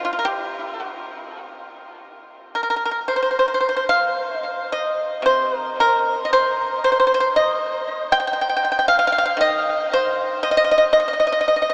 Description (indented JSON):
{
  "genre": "chinese traditional, Chinese solo plucked strings",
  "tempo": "51-60 BPM",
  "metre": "4/4",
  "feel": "rubato",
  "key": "unclear",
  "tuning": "A4 = 440 Hz",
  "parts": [
    { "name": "pipa", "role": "solo", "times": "0.0-11.7 s", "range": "C3 to G5", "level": "-20 LUFS", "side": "equal", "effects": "tape echo" }
  ],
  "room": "wet huge ambient reverb, RT60 8.4 s",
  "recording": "dreamy mix soaked in reverb, small speaker sound",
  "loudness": "-20 LUFS",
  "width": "mono",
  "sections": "0.0-3.1 A section; 3.1-11.7 B section",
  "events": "none",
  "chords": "none"
}